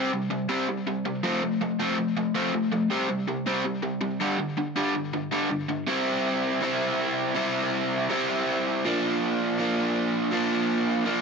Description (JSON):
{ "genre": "punk", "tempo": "162 BPM", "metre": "4/4", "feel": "straight", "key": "C mixolydian from 5.9 s", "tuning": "A4 = 440 Hz", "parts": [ { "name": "overdriven electric guitar", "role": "solo", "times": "0.0-11.2 s", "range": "G2 to E4", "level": "-24 LUFS", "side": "equal", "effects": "ping-pong delay" } ], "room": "moderate studio reverb, RT60 0.7 s", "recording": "none", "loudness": "-24 LUFS", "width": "side -5 dB against mid", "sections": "0.0-5.9 A section; 5.9-11.2 B section", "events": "none", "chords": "0.0 C5; 1.2 F; 2.9 C5; 4.2 G5; 5.9 C; 8.8 Bb" }